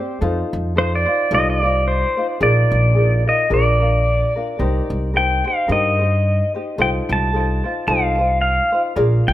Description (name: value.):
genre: Hawaiian.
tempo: 110 BPM.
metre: 4/4.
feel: swing 57% on 8ths.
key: unclear.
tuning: A4 = 437 Hz.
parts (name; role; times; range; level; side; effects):
ukulele; accompaniment; 0.0-9.3 s; C4 to D5; -23 LUFS; left 2 dB; none.
upright bass; bass; 0.2-9.3 s; Bb1 to G2; -19 LUFS; equal; none.
pedal steel guitar; melody; 0.8-9.3 s; C5 to A5; -19 LUFS; equal; tape echo.
room: moderate echo chamber reverb, RT60 1.7 s.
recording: none.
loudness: -15 LUFS.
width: side -14 dB against mid.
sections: 0.0-9.3 A section.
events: none.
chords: 0.2 F7; 2.4 Bb7sus4; 3.5 Bb7; 4.6 Cm7; 6.8 F7/C.